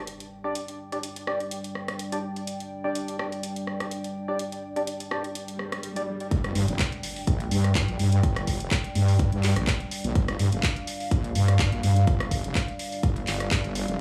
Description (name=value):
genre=bass house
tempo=125 BPM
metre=4/4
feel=swing 54% on 16ths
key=unclear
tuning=A4 = 440 Hz
part: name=dark analog pad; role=sustained chords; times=0.0-14.0 s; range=G3 to G5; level=-37 LUFS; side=equal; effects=chorus, sidechain pumping
part: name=percussive organ stab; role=stabs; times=0.0-6.0 s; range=D4 to D5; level=-35 LUFS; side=equal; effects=analog chorus, vintage 12-bit sampler grit, sidechain pumping, digital delay
part: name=sub drop, swell and impact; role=sound effects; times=0.0-0.6, 5.6-8.2 s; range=none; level=-40 LUFS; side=equal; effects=none
part: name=garage drum kit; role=drums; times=0.1-14.0 s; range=handclaps, hi-hat, rim click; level=-34 LUFS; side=equal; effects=none
part: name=wobble bass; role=bass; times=6.3-14.0 s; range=F1 to G2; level=-26 LUFS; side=equal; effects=chorus, tube saturation, sidechain pumping
part: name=electronic kick drum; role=drums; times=6.3-13.6 s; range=none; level=-28 LUFS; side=equal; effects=none
room=light reverb, digital ambience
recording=studio reverb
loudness=-27 LUFS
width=mono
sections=0.0-6.3 A section; 6.3-14.0 B section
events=impact 0.0-0.6, 6.3-8.2; swell 5.6-6.3; drop 6.3-14.0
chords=0.0 G5